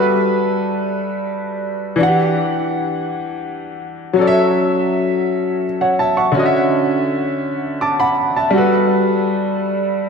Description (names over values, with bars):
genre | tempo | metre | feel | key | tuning
R&B | 55 BPM (dotted quarters) | 6/8 | straight | unclear | A4 = 440 Hz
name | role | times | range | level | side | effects
clear grand piano | solo | 0.0-10.1 s | D3 to D6 | -15 LUFS | equal | analog chorus, analog delay
room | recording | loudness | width
wet plate reverb, RT60 2.9 s | dreamy mix soaked in reverb | -15 LUFS | side -5 dB against mid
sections
0.0-10.1 A section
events
none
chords
0.0 Gmaj9; 2.0 Em9; 4.2 F#m7; 6.3 Dmaj9; 8.5 Gmaj9